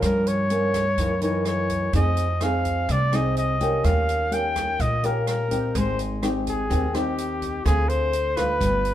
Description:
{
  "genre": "bossa nova",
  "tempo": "126 BPM",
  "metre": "4/4",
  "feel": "straight",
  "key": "unclear",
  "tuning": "A4 = 441 Hz",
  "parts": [
    { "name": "warm flugelhorn", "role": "melody", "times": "0.0-8.9 s", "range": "G4 to G5", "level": "-25 LUFS", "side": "left 1 dB", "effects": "none" },
    { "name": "nylon-string guitar", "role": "accompaniment", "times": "0.0-8.9 s", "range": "F#2 to B4", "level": "-26 LUFS", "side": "left 1 dB", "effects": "none" },
    { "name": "upright bass", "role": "bass", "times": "0.0-8.9 s", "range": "G1 to G2", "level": "-25 LUFS", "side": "right 1 dB", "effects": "none" },
    { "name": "open jazz drum kit", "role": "drums", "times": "0.0-8.9 s", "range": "hi-hat, kick drum, rim click", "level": "-31 LUFS", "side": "equal", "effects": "none" }
  ],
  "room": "moderate studio reverb, RT60 0.8 s",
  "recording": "band playing live in one room",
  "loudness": "-21 LUFS",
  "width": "side -12 dB against mid",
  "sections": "0.0-8.9 A section",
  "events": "none",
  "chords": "0.0 Gm7b5; 1.0 F#6; 1.9 Fm7; 3.8 Eb7; 5.7 Abmaj7; 7.7 Dm7b5"
}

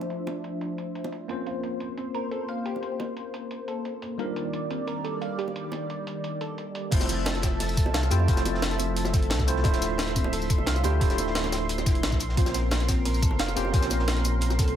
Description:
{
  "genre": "liquid drum and bass",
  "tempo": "176 BPM",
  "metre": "4/4",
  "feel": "straight",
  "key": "F major",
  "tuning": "A4 = 440 Hz",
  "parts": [
    { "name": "tine electric piano", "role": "accompaniment", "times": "0.0-14.8 s", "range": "G3 to C5", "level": "-32 LUFS", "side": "equal", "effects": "fast stereo tremolo, tape echo" },
    { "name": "warm analog pad", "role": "sustained chords", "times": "0.0-14.8 s", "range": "Eb3 to C6", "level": "-34 LUFS", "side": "left 1 dB", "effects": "chorus, sidechain pumping" },
    { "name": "bongos", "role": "percussion", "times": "0.0-3.1, 5.5-14.6 s", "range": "none", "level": "-39 LUFS", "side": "right 4 dB", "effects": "none" },
    { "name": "breakbeat sampler-style drum kit", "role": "drums", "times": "0.1-14.7 s", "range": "crash cymbal, hi-hat, snare drum, tambourine", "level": "-32 LUFS", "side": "equal", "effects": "low-pass filter on hats, low-pass filter on cymbals, low-pass filter on snare, low-pass filter on perc, low-pass filter on room" },
    { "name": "harp-like synth pluck", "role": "arpeggios", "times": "1.5-14.7 s", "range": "C4 to F5", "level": "-36 LUFS", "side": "right 3 dB", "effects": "chorus, phaser, ping-pong delay" },
    { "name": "sub bass with octave", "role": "bass", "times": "6.9-14.8 s", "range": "D1 to F2", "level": "-28 LUFS", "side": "equal", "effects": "none" },
    { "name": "crunchy breakbeat drum kit", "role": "drums", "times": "6.9-14.7 s", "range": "hi-hat, snare drum", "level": "-39 LUFS", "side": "equal", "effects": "high-pass filter on hats, high-pass filter on snare, high-pass filter on room" },
    { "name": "electronic kick drum", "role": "drums", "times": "6.9-14.7 s", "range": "none", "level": "-25 LUFS", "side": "equal", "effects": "none" }
  ],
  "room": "light reverb, digital ambience",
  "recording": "none",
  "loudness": "-24 LUFS",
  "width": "side -10 dB against mid",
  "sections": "0.0-6.9 A section; 6.9-14.8 B section",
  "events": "filter sweep on analog synth pad 0.0-6.9; drop 6.9-14.8",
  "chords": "0.0 Dm9; 1.3 Bbmadd9; 4.2 Ebmaj7; 6.9 Fmaj7; 9.6 Dm9; 12.2 Bbmadd9"
}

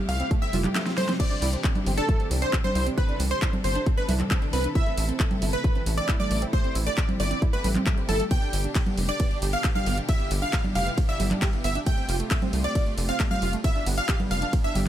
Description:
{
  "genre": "uplifting trance",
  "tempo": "135 BPM",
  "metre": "4/4",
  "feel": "straight",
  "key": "C major",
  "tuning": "A4 = 440 Hz",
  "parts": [
    { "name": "rich symphonic string section", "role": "sustained chords", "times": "0.0-14.9 s", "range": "B2 to A4", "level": "-36 LUFS", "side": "equal", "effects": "sidechain pumping" },
    { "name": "wide unison pluck", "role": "arpeggios", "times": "0.0-14.8 s", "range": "A3 to G4", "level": "-35 LUFS", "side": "right 4 dB", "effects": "ensemble chorus, sidechain pumping, digital delay" },
    { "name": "supersaw stab", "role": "melody", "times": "0.1-14.8 s", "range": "A4 to G5", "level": "-31 LUFS", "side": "right 1 dB", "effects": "sidechain pumping, digital delay" },
    { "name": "plucky unison lead", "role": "second line", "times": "0.1-14.8 s", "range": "A4 to G5", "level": "-36 LUFS", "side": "equal", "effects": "sidechain pumping, digital delay" },
    { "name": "tight sequencer bass", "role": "bass", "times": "0.1-14.9 s", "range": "F1 to C2", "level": "-26 LUFS", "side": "equal", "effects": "sidechain pumping" },
    { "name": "big-room dance drum kit", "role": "drums", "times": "0.1-14.8 s", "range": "congas, crash cymbal, handclaps, hi-hat, ride cymbal, snare drum", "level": "-30 LUFS", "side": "equal", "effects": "overdrive, sidechain pumping on hats, sidechain pumping on perc, sidechain pumping on cymbals" },
    { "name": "electronic kick drum", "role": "drums", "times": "0.3-14.6 s", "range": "none", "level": "-24 LUFS", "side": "equal", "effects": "none" }
  ],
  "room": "digital ambience",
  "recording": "none",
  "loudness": "-22 LUFS",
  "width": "side -12 dB against mid",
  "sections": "0.0-14.9 A section",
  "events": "drum fill 0.8-1.2",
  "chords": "0.0 Fadd9; 1.2 Cadd9; 4.8 Am; 8.3 G; 11.9 Fadd9; 13.6 G"
}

